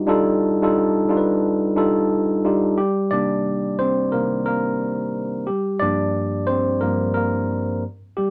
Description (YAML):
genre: R&B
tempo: 89 BPM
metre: 4/4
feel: swing 60% on 16ths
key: G minor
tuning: A4 = 440 Hz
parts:
  - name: tine electric piano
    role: solo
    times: 0.0-8.3 s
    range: G2 to D5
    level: -21 LUFS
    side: equal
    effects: none
room: light reverb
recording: none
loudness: -21 LUFS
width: mono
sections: 0.0-2.8 A section; 2.8-8.3 A section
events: tine electric piano solo 2.8-8.3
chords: 0.0 G7b13; 2.8 Cm9; 5.5 Gm7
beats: | 0.07 0.75 1.42 2.10 | 2.77 3.44 4.12 4.79 | 5.47 6.14 6.82 7.49 | 8.16